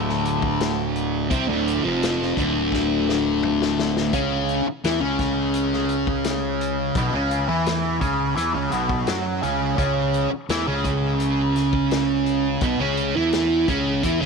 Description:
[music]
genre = psychedelic rock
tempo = 85 BPM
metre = 4/4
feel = straight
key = unclear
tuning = A4 = 440 Hz
[part]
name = fuzz guitar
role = riff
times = 0.0-14.3 s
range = D2 to F#4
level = -21 LUFS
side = equal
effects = distortion, phaser
[part]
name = fuzz fingered electric bass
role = bass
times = 0.0-14.3 s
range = D1 to F#2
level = -28 LUFS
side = equal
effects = overdrive
[part]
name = vintage drum kit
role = drums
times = 0.1-14.3 s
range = hi-hat, kick drum, snare drum, toms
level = -29 LUFS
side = left 3 dB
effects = none
[sound]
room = little or no reverb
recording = 1960s-style stereo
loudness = -20 LUFS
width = side -4 dB against mid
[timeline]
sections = 0.0-14.3 A section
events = drum fill 2.7-4.1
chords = 0.0 Dm7; 4.1 Bsus24

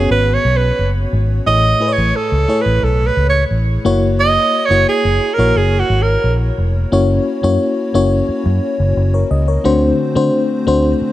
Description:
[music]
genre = 1980s-style pop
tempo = 88 BPM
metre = 4/4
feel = straight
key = unclear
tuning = A4 = 440 Hz
[part]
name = breathy alto saxophone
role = melody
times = 0.0-6.4 s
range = F#4 to D#5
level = -16 LUFS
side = right 4 dB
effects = none
[part]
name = FM electric piano with soft pad layer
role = accompaniment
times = 0.0-11.1 s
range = A2 to D#5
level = -17 LUFS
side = left 3 dB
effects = chorus, tremolo
[part]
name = vintage muted fingered electric bass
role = bass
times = 0.0-11.0 s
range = E#1 to D3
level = -16 LUFS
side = equal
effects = none
[sound]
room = light reverb, small room ambience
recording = none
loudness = -12 LUFS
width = side -14 dB against mid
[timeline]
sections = 0.0-6.9 A section; 6.9-11.1 B section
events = alto saxophone solo 0.0-6.9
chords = 0.0 F#sus4; 1.5 Amaj7; 3.9 F#7; 9.7 D7

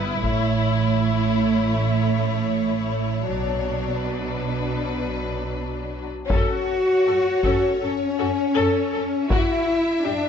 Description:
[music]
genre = cinematic, epic orchestral film score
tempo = 80 BPM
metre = 4/4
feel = straight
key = F# minor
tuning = A4 = 444 Hz
[part]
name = rich studio violin section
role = melody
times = 0.0-10.3 s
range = B4 to E5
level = -30 LUFS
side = left 6 dB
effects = none
[part]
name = warm symphonic violin section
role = second line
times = 0.0-10.1 s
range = C#4 to A4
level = -29 LUFS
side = left 5 dB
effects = none
[part]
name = rich symphonic viola section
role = accompaniment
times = 0.0-10.1 s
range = F#3 to A4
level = -29 LUFS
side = right 2 dB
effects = none
[part]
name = rich symphonic cello section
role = bass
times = 0.0-10.3 s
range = G2 to F#4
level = -26 LUFS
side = right 3 dB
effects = none
[part]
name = rich symphonic double bass section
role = bass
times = 0.0-10.1 s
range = G1 to F#2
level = -27 LUFS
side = right 4 dB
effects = none
[part]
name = solo taiko drums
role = drums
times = 0.2-1.7, 6.3-10.0 s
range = none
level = -25 LUFS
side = left 1 dB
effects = none
[part]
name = dark French horn section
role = sustained chords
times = 6.3-10.3 s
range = C#4 to F#4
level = -22 LUFS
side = left 4 dB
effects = none
[sound]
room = moderate scoring stage reverb, RT60 1.8 s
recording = nothing above 7.7 kHz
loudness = -20 LUFS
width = side -7 dB against mid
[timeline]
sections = 0.0-6.3 A section; 6.3-10.3 B section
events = build-up 0.0-6.3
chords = 0.2 A; 3.3 Bm; 6.3 F#m; 9.3 Esus2/F#

